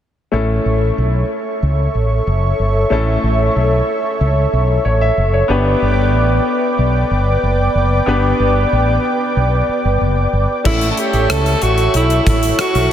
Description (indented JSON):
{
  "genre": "1980s-style pop",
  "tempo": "93 BPM",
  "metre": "4/4",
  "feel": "straight",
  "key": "A mixolydian",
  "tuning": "A4 = 440 Hz",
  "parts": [
    { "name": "bright concert grand piano", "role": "accompaniment", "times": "0.3-12.9 s", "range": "A3 to E5", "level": "-20 LUFS", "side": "left 2 dB", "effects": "none" },
    { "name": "brassy analog pad", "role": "sustained chords", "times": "0.3-12.9 s", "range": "A4 to D6", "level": "-18 LUFS", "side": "equal", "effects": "chorus" },
    { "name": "mellow fretless electric bass", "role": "bass", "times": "0.3-12.9 s", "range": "F#1 to C#2", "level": "-16 LUFS", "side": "equal", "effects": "none" },
    { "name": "bright alto saxophone", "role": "melody", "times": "10.7-12.9 s", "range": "E4 to A4", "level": "-16 LUFS", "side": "right 1 dB", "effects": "tape echo" },
    { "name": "gated 80s drum kit", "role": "drums", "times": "10.7-12.9 s", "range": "crash cymbal, hi-hat, kick drum, rim click", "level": "-20 LUFS", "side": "equal", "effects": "none" }
  ],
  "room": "moderate huge ambient reverb, RT60 8.7 s",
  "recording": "dreamy mix soaked in reverb",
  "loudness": "-13 LUFS",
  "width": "side -10 dB against mid",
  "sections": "0.3-10.7 A section; 10.7-12.9 B section",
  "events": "none",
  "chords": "0.3 A; 5.5 G; 10.7 A"
}